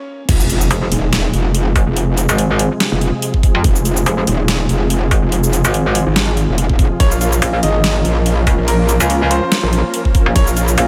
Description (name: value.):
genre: heavy wobble dubstep.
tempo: 143 BPM.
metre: 4/4.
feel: swing 55% on 16ths, half-time.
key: F minor.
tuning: A4 = 440 Hz.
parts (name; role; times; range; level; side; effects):
bright grand piano; melody; 0.0-0.2, 7.0-10.8 s; Bb3 to Eb5; -25 LUFS; equal; delay.
supersaw chords; sustained chords; 0.3-10.9 s; C3 to Bb4; -24 LUFS; equal; vintage 12-bit sampler grit, sidechain pumping, low-pass filter.
metallic wobble bass; bass; 0.3-10.8 s; Eb1 to Bb1; -18 LUFS; equal; distortion, chorus, overdrive.
dubstep drum kit; drums; 0.3-10.9 s; crash cymbal, hi-hat, ride cymbal, shaker, snare drum; -23 LUFS; equal; overdrive, small room reverb.
electronic kick drum; drums; 0.3-10.4 s; none; -16 LUFS; equal; small room reverb.
impact; sound effects; 0.3-2.0 s; none; -25 LUFS; equal; none.
metallic wobble bass; bass; 0.7-10.9 s; F1 to F2; -17 LUFS; equal; chorus, overdrive.
room: light reverb.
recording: high-pass filter.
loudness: -15 LUFS.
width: mono.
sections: 0.3-10.9 A section.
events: break 0.0; drop 0.3-10.9; impact 0.3-2.0.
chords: 0.3 Fm; 7.0 Bbm.